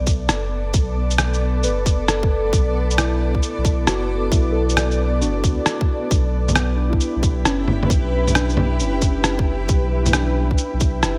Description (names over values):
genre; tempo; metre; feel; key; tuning
future garage; 134 BPM; 4/4; swing 66% on 16ths; B minor; A4 = 442 Hz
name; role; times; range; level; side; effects
muted felt-like synth keys; accompaniment; 0.0-11.2 s; B3 to D5; -29 LUFS; equal; chorus, phaser, sidechain pumping, delay
granular cloud pad; sustained chords; 0.0-11.2 s; B3 to D5; -28 LUFS; equal; built-in reverb, sidechain pumping
warm sub bass; bass; 0.0-11.2 s; F#1 to D2; -24 LUFS; equal; sidechain pumping
electronic kick drum; drums; 0.1-10.9 s; none; -21 LUFS; equal; small room reverb
electronic shaker, rim click and bongos; drums; 0.1-11.2 s; none; -24 LUFS; equal; small room reverb
room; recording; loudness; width
light reverb, digital ambience; none; -19 LUFS; mono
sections
0.0-11.2 A section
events
none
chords
0.0 Bm7; 6.1 Em